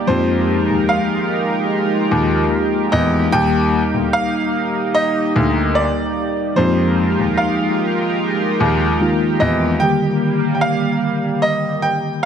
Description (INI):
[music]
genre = contemporary R&B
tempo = 74 BPM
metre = 4/4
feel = straight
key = Eb major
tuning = A4 = 440 Hz
[part]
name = clear baby grand piano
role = melody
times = 0.0-12.3 s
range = C5 to G5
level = -20 LUFS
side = right 2 dB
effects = ping-pong delay
[part]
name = mellow tine electric piano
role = accompaniment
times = 0.0-12.3 s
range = D3 to G4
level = -20 LUFS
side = left 2 dB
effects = medium stereo tremolo
[part]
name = chorused pulse-width pad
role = sustained chords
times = 0.0-12.3 s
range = G3 to Bb4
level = -21 LUFS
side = right 2 dB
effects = none
[part]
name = clear grand piano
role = bass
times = 0.1-9.7 s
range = D2 to F2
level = -18 LUFS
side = left 1 dB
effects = none
[sound]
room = light reverb, small room ambience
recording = none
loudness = -15 LUFS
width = side -8 dB against mid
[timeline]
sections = 0.0-12.3 A section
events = none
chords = 0.1 Fm11; 3.3 Ebmaj7; 6.6 Fm11; 9.8 Ebmaj7